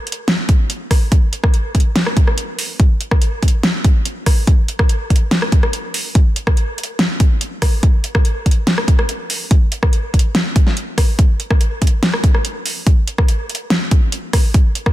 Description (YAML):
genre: future bass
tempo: 143 BPM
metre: 4/4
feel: half-time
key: none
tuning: none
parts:
  - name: pop drum kit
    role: drums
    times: 0.1-14.9 s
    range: hi-hat, rim click, snare drum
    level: -19 LUFS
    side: equal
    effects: overdrive
  - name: electronic kick drum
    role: drums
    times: 0.5-14.9 s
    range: none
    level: -13 LUFS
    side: equal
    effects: overdrive
room: little or no reverb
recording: dense, heavily limited modern master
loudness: -13 LUFS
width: side -15 dB against mid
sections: 0.0-14.9 A section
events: none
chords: none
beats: 0.28 0.70 | 1.12 1.54 1.96 2.38 | 2.80 3.21 3.63 4.05 | 4.47 4.89 5.31 5.73 | 6.15 6.57 6.99 7.41 | 7.83 8.25 8.67 9.09 | 9.51 9.93 10.35 10.77 | 11.19 11.61 12.03 12.45 | 12.87 13.29 13.71 14.12 | 14.54